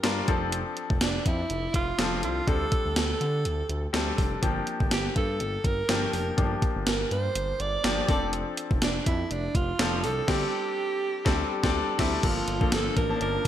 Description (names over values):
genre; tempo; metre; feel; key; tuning
1980s-style pop; 123 BPM; 4/4; swing 55% on 16ths; G dorian; A4 = 440 Hz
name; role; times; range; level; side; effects
clear baby grand piano; accompaniment; 0.0-13.5 s; F3 to A5; -31 LUFS; left 4 dB; none
smooth synth bass; bass; 0.0-13.5 s; F1 to D3; -32 LUFS; equal; none
gated 80s digital drum machine; drums; 0.0-13.5 s; crash cymbal, hi-hat, kick drum, snare drum; -27 LUFS; equal; gated reverb, gated reverb snare
clear alto saxophone; melody; 1.0-13.5 s; D4 to D5; -30 LUFS; right 3 dB; none
ensemble organ-string; sustained chords; 12.2-13.5 s; F3 to D4; -36 LUFS; left 2 dB; phaser, ensemble chorus
room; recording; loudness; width
moderate lush hall reverb, RT60 1.9 s; bright 1980s-style digital production; -24 LUFS; side -11 dB against mid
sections
0.0-12.2 A section; 12.2-13.5 B section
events
band accent 10.3-12.2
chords
0.3 F6; 2.5 D7sus4; 4.4 Gm7; 8.1 F6; 10.3 D7sus4; 12.2 Bbmaj7/G